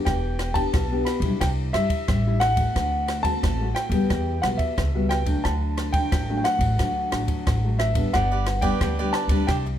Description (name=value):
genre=samba and choro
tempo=89 BPM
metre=4/4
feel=straight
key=G major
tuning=A4 = 440 Hz
part: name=nylon-string guitar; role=accompaniment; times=0.0-9.8 s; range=G2 to G4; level=-27 LUFS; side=left 3 dB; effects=none
part: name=warm concert grand piano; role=melody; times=0.1-9.5 s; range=E5 to B5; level=-27 LUFS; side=equal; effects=none
part: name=upright bass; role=bass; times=0.1-9.8 s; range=E1 to G2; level=-26 LUFS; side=equal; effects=none
part: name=compact cocktail drum kit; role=drums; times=0.1-9.6 s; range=kick drum, ride cymbal, rim click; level=-27 LUFS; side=equal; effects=none
part: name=cavaquinho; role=accompaniment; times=8.1-9.7 s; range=D4 to D5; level=-30 LUFS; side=right 6 dB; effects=none
room=moderate small room reverb, RT60 0.5 s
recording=none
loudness=-21 LUFS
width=side -10 dB against mid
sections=0.0-9.8 A section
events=none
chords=0.1 Em7; 1.4 Cadd9; 2.8 D7; 4.1 Emadd9; 5.5 D; 8.1 G